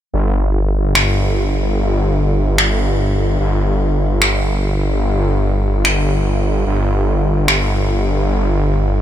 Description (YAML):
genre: future bass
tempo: 147 BPM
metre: 4/4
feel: swing 53% on 16ths, half-time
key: unclear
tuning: A4 = 440 Hz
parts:
  - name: wide detuned saw bass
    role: bass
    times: 0.1-9.0 s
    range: G1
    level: -15 LUFS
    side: equal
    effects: chorus
  - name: electronic finger snaps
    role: drums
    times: 1.0-7.6 s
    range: none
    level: -20 LUFS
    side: equal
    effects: studio ambience
room: little or no reverb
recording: none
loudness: -14 LUFS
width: side -11 dB against mid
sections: 0.1-9.0 A section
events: none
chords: none